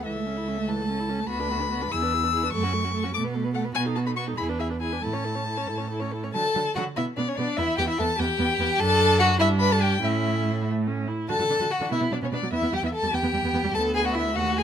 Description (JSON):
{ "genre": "quick classical-period movement for string quartet", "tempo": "97 BPM (dotted quarters)", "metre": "6/8", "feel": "rubato", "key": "A major, D major from 6.3 s", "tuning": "A4 = 438 Hz", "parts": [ { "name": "warm violin", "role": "melody", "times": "0.0-14.6 s", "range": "C#5 to E6", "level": "-28 LUFS", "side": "left 4 dB", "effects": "none" }, { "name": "warm violin", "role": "second line", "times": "0.0-14.6 s", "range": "C#4 to C#5", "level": "-28 LUFS", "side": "left 1 dB", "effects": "none" }, { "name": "warm viola", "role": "accompaniment", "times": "0.0-14.6 s", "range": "E3 to F#4", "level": "-32 LUFS", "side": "right 3 dB", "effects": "none" }, { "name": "rich cello", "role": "bass", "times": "0.0-14.6 s", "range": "C#2 to D3", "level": "-28 LUFS", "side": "right 3 dB", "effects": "none" } ], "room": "light reverb", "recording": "close, detailed microphones", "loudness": "-22 LUFS", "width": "side -9 dB against mid", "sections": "0.0-6.3 A section; 6.3-14.6 B section", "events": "none", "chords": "0.1 A/C#; 1.3 Bm/D; 1.9 E7; 2.5 F#m; 3.1 B7(no3); 3.8 B7; 4.4 E7; 5.0 A; 6.3 D; 7.0 Bm; 7.6 Em; 8.8 D/F#; 9.4 Gadd9; 10.0 A; 11.3 D; 11.9 B5; 12.5 Em; 13.7 Bm/D", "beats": "| 0.06 0.69 | 1.30 1.92 | 2.54 3.14 | 3.75 4.38 | 5.03 5.69 | 6.34 6.97 | 7.58 8.19 | 8.80 9.40 | 10.03 10.66 | 11.30 11.92 | 12.53 13.13 | 13.74 14.36" }